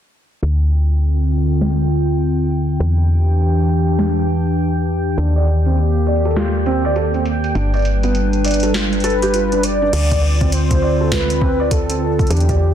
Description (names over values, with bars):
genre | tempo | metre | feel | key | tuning
IDM | 101 BPM | 4/4 | swing 62% on 16ths | D dorian | A4 = 440 Hz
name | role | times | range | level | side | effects
warbly tape-like pad | sustained chords | 0.8-12.7 s | D3 to B4 | -20 LUFS | equal | chorus, built-in reverb
woody FM bass | bass | 0.4-12.7 s | G1 to E2 | -17 LUFS | equal | tube saturation
booming analog drum machine | drums | 0.4-12.6 s | crash cymbal, hi-hat, snare drum | -24 LUFS | equal | none
bubbling stepped-filter texture | texture | 0.4-9.9 s | G5 | -31 LUFS | right 3 dB | chorus, built-in reverb
felt-muted upright piano | arpeggios | 5.2-12.6 s | B3 to D5 | -23 LUFS | right 3 dB | low-pass filter, tape echo
warm velvety synth lead | melody | 9.0-12.7 s | G4 to D5 | -20 LUFS | left 1 dB | chorus, ping-pong delay
electronic kick drum | drums | 10.1-12.6 s | none | -19 LUFS | equal | overdrive
room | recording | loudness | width
moderate echo chamber reverb, RT60 1.4 s, digital ambience | dense, heavily limited modern master, low-pass filter | -14 LUFS | side -10 dB against mid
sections
0.4-9.9 A section; 9.9-12.7 B section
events
filter sweep on FM bass 0.4-9.9; filter sweep 0.4-9.9; filter sweep on felt piano 9.9-12.7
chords
0.4 Dm7; 2.8 Em7; 5.2 Eb; 7.6 G; 9.9 Dm7